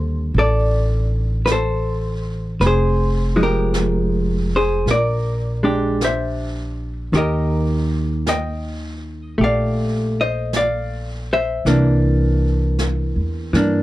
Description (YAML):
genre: jazz ballad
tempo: 53 BPM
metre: 4/4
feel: swing 67% on 8ths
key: unclear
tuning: A4 = 439 Hz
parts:
  - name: vintage hollow-body jazz guitar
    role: accompaniment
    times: 0.0-13.8 s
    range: D3 to G5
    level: -20 LUFS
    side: equal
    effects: none
  - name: upright bass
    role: bass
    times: 0.0-13.8 s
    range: F1 to G2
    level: -20 LUFS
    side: equal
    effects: none
  - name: jazz brush drum kit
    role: drums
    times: 0.3-13.8 s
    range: brushed snare drum, hi-hat, snare drum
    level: -30 LUFS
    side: right 1 dB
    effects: none
room: little or no reverb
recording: none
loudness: -17 LUFS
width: side -16 dB against mid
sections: 0.0-13.8 A section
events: none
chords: 0.0 D7(no3); 2.6 Fmadd9; 4.9 Bb13; 7.1 Ebmaj7#11; 11.7 C9